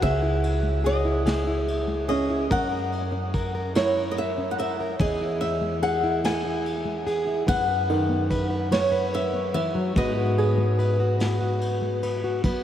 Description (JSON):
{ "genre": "folk", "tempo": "48 BPM (dotted quarters)", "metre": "6/8", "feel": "straight", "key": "unclear", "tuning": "A4 = 440 Hz", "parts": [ { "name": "flamenco guitar", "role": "melody", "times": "0.0-12.6 s", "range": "C#5 to G#5", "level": "-28 LUFS", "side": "equal", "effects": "wide subtle chorus, analog delay" }, { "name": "fingerpicked plugged-in steel-string acoustic guitar", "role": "accompaniment", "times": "0.0-12.6 s", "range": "G#2 to B4", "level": "-27 LUFS", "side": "left 1 dB", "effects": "none" }, { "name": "upright bass", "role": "bass", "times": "0.0-12.6 s", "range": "C#2 to G#2", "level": "-28 LUFS", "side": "equal", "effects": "none" }, { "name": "vintage brush drum kit", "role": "drums", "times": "0.0-12.6 s", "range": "kick drum, ride cymbal, snare drum", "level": "-32 LUFS", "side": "equal", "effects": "none" }, { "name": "felt-muted upright piano", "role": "arpeggios", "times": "2.1-12.6 s", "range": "D#3 to G#4", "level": "-32 LUFS", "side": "right 3 dB", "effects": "none" } ], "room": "moderate huge ambient reverb, RT60 8.5 s", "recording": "dreamy mix soaked in reverb", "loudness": "-22 LUFS", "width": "side -10 dB against mid", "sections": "0.0-12.6 A section", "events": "none", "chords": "0.0 C#madd9; 2.5 F#; 5.0 E; 7.5 F#7sus4; 10.0 G#m7" }